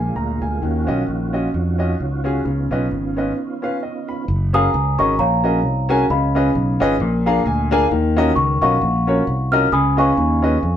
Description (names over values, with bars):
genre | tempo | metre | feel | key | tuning
uptempo gospel | 132 BPM | 4/4 | swing 56% on 8ths | F# major | A4 = 439 Hz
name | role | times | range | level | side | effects
warm upright piano | accompaniment | 0.0-10.6 s | A#2 to B5 | -20 LUFS | equal | none
tonewheel organ | sustained chords | 0.0-4.3 s | D3 to F#4 | -28 LUFS | right 5 dB | slow rotary speaker, chorus vibrato
fingered electric bass | bass | 0.0-10.8 s | F#1 to E#2 | -20 LUFS | equal | none
celesta | melody | 4.5-10.8 s | C#5 to E#6 | -19 LUFS | left 1 dB | none
room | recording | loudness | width
moderate studio reverb, RT60 0.6 s | band playing live in one room | -16 LUFS | side -10 dB against mid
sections
0.0-4.3 A section; 4.3-10.8 B section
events
break 3.4-4.3; upright piano fill 7.0-7.9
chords
0.0 A#7; 0.6 D#m9; 2.5 C#9; 4.3 F#maj9; 6.1 C#9; 7.0 A#7; 7.9 D#m9; 9.7 C#9